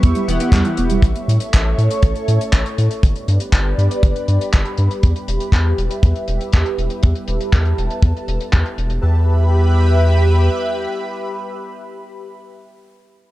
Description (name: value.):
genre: italo disco.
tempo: 120 BPM.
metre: 4/4.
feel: straight.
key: E dorian.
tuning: A4 = 441 Hz.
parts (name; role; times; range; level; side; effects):
lush unison pad; sustained chords; 0.0-12.5 s; G4 to C#6; -23 LUFS; right 1 dB; chorus, phaser.
soft round pluck; arpeggios; 0.0-1.0 s; E3 to B3; -22 LUFS; right 2 dB; wide subtle chorus, cassette tape, digital delay.
chorused polysynth; stabs; 0.0-1.0 s; B3 to F#5; -24 LUFS; left 2 dB; cassette tape, digital delay.
round analog bass; bass; 0.0-10.5 s; E1 to A2; -16 LUFS; equal; none.
damped 70s drum kit; drums; 0.0-9.0 s; handclaps, hi-hat; -26 LUFS; left 1 dB; low-pass filter on hats, studio ambience, low-pass filter on snare, low-pass filter on room.
kick drum; drums; 0.0-8.6 s; none; -12 LUFS; equal; studio ambience.
room: studio reverb.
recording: dark, warm production.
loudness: -14 LUFS.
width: side -16 dB against mid.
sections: 0.0-9.0 A section; 9.0-13.0 B section.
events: filter sweep on analog synth pad 0.0-9.0.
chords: 0.0 Em; 1.0 A; 3.0 G; 5.0 Em.